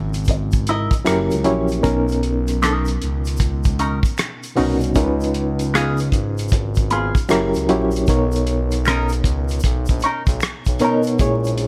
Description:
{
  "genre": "R&B, neo-soul",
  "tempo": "77 BPM",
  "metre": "4/4",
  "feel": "swing 64% on 16ths",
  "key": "unclear",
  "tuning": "A4 = 439 Hz",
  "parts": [
    { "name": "bright reed electric piano", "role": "accompaniment", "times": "0.0-11.7 s", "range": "A#2 to C#5", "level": "-23 LUFS", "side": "equal", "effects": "fast tremolo" },
    { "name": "smooth synth bass", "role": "bass", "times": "0.0-11.7 s", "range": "F#1 to B2", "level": "-24 LUFS", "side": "equal", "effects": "none" },
    { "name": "cloth-damped thuddy drum kit", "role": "drums", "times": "0.1-11.7 s", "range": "hi-hat, kick drum, rim click", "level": "-23 LUFS", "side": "equal", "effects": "none" },
    { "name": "tube shaker and finger snaps", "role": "percussion", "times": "0.1-11.6 s", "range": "none", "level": "-37 LUFS", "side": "equal", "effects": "none" },
    { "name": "vintage hollow-body jazz guitar", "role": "second line", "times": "0.3-11.0 s", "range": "B3 to D#5", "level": "-24 LUFS", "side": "equal", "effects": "wah" },
    { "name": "tonewheel organ", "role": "sustained chords", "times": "11.2-11.7 s", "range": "G#3 to C#4", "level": "-32 LUFS", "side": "equal", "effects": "none" }
  ],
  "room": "little or no reverb",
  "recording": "vinyl crackle",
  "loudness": "-19 LUFS",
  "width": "mono",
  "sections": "0.0-11.7 A section",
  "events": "none",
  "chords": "0.0 C#m69; 1.1 F#7b9; 1.8 Bmaj9; 5.0 C#7; 7.3 F#7b9; 8.1 Bmaj9"
}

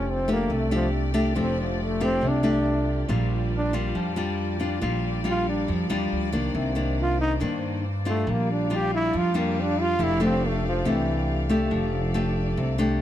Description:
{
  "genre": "bossa nova",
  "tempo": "139 BPM",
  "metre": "4/4",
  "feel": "straight",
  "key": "F major",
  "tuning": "A4 = 440 Hz",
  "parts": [
    { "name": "bright trombone", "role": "melody", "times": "0.0-11.5 s", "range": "E3 to G4", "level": "-26 LUFS", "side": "right 1 dB", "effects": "none" },
    { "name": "nylon-string guitar", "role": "accompaniment", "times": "0.0-13.0 s", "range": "G2 to G4", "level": "-26 LUFS", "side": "left 2 dB", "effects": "none" },
    { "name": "warm studio string section", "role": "sustained chords", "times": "0.0-13.0 s", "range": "A3 to F5", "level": "-35 LUFS", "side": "left 1 dB", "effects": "none" },
    { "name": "upright bass", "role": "bass", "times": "0.0-13.0 s", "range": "F1 to G2", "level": "-28 LUFS", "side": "right 1 dB", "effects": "none" }
  ],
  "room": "light reverb",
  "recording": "none",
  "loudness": "-22 LUFS",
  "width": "side -12 dB against mid",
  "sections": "0.0-13.0 A section",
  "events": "trombone solo 0.0-13.0",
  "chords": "0.0 F69; 3.1 Bb6; 6.5 Cm9; 8.3 Bb6; 10.0 F69"
}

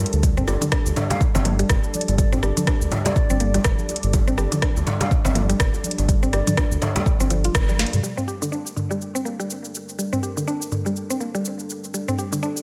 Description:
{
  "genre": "afro house",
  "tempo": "123 BPM",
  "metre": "4/4",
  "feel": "swing 58% on 16ths",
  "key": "G minor",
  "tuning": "A4 = 440 Hz",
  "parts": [
    { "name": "dark analog pad", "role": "sustained chords", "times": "0.0-12.6 s", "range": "G3 to D5", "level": "-34 LUFS", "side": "equal", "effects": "chorus, sidechain pumping" },
    { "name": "round analog bass", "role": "bass", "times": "0.0-8.0 s", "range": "G1 to G2", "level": "-25 LUFS", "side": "equal", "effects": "sidechain pumping" },
    { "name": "afro-pop drum kit", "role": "drums", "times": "0.1-12.6 s", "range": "cabasa, hi-hat, rim click, snare drum, toms", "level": "-29 LUFS", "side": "equal", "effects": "studio reverb" },
    { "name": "mallet-like synth pluck", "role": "arpeggios", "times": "0.2-12.6 s", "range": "D3 to G4", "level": "-29 LUFS", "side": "equal", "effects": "chorus, sidechain pumping, dub echo" },
    { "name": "electronic kick drum", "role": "drums", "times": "0.2-7.7 s", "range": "none", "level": "-23 LUFS", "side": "equal", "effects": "studio reverb" },
    { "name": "congas", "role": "percussion", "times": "0.2-8.0 s", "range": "none", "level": "-33 LUFS", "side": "equal", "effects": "none" },
    { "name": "djembe", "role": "percussion", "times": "0.2-7.9 s", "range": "none", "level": "-35 LUFS", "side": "equal", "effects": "none" },
    { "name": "mellow hollow silver concert flute", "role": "melody", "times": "1.1-6.7 s", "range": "D5 to F5", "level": "-36 LUFS", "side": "equal", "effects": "dub echo" }
  ],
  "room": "light reverb",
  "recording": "none",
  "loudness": "-22 LUFS",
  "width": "mono",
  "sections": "0.0-8.0 A section; 8.0-12.6 B section",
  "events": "band accent 7.5; drum fill 7.8; filter sweep on synth arpeggio sound 8.0-12.6",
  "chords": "0.0 Gsus2; 8.0 Gmadd9"
}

